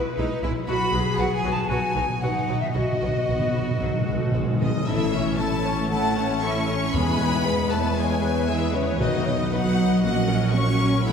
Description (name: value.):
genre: cinematic.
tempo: 116 BPM.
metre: 4/4.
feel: straight.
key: unclear.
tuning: A4 = 439 Hz.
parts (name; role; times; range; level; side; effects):
hollow concert flute; second line; 0.0-4.3 s; B4 to B5; -28 LUFS; left 1 dB; none.
warm symphonic violin section; second line; 0.0-11.1 s; B4 to B5; -33 LUFS; left 4 dB; none.
concert harp; arpeggios; 0.0-11.1 s; A2 to C#6; -31 LUFS; left 4 dB; none.
rich studio violin section; melody; 0.2-11.1 s; B4 to C#6; -30 LUFS; left 3 dB; none.
rich studio viola section; accompaniment; 0.2-11.1 s; F#3 to C#5; -30 LUFS; equal; none.
clear symphonic cello section; bass; 0.2-11.1 s; C#3 to G#4; -29 LUFS; right 2 dB; none.
rich symphonic double bass section; bass; 0.2-11.1 s; A1 to E2; -28 LUFS; right 3 dB; none.
timpani; percussion; 0.7-9.7 s; E2 to B2; -28 LUFS; equal; none.
dark French horn section; sustained chords; 4.9-11.1 s; E3 to C#4; -29 LUFS; left 2 dB; none.
room: wet concert hall reverb, RT60 2.4 s.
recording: heard from further back in the room.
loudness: -20 LUFS.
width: side -7 dB against mid.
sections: 0.0-4.9 A section; 4.9-11.1 B section.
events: timpani fill 0.7-4.9.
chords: 0.0 E/B; 0.7 B; 4.9 A; 6.9 E; 9.0 B; 10.0 F#/A#.